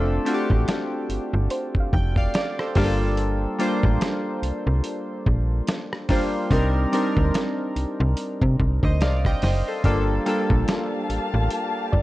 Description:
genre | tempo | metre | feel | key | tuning
contemporary R&B | 72 BPM | 4/4 | swing 58% on 16ths | G minor | A4 = 440 Hz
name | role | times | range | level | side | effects
warm analog keys | accompaniment | 0.0-12.0 s | G3 to G5 | -25 LUFS | equal | chorus
slap-like FM bass | bass | 0.0-12.0 s | F1 to C3 | -22 LUFS | equal | none
soft round pluck | texture | 0.0-3.4, 9.8-12.0 s | C5 to F5 | -33 LUFS | right 2 dB | chorus, tape echo
dusty soul sampler-style drum kit | drums | 0.3-12.0 s | hi-hat, kick drum, rim click, snare drum | -24 LUFS | equal | none
muted chamber string section | sustained chords | 9.8-12.0 s | Bb3 to A5 | -29 LUFS | left 2 dB | sidechain pumping
room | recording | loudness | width
digital ambience | dry, gritty hardware recording | -20 LUFS | side -17 dB against mid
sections
0.0-12.0 A section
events
none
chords
0.0 Dm7/F; 2.8 Gm9; 6.5 Cm9; 9.8 Gm9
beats
0.67 1.51 2.34 | 3.17 4.01 4.84 5.67 | 6.51 7.34 8.17 9.01 | 9.84 10.67 11.51

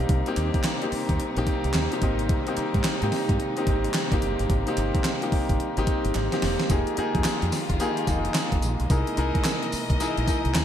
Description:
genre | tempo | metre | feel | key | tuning
R&B, new jack swing | 109 BPM | 4/4 | swing 63% on 16ths | unclear | A4 = 444 Hz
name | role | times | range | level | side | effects
clear concert grand piano | accompaniment | 0.0-10.6 s | Bb3 to Bb4 | -27 LUFS | left 1 dB | none
warm studio string section | sustained chords | 0.0-10.6 s | C3 to D#5 | -33 LUFS | right 1 dB | none
deep dub fingered electric bass | bass | 0.0-10.6 s | E1 to Ab2 | -28 LUFS | equal | none
gated 80s digital drum machine | drums | 0.1-10.6 s | handclaps, hi-hat, kick drum, snare drum, tambourine | -26 LUFS | equal | gated reverb, gated reverb snare, overdrive
group handclap | percussion | 0.4-10.6 s | none | -41 LUFS | right 5 dB | none
room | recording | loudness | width
moderate lush hall reverb, RT60 2.1 s | bright 1980s-style digital production | -22 LUFS | side -10 dB against mid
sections
0.0-6.7 A section; 6.7-10.6 B section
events
drum fill 6.1-6.7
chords
0.0 Cm7; 2.0 Abmaj7; 6.7 Fm11; 8.9 C7alt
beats
| 0.09 0.64 1.19 1.74 | 2.29 2.85 3.40 3.95 | 4.50 5.05 5.60 6.15 | 6.70 7.25 7.80 8.35 | 8.90 9.45 10.00 10.55

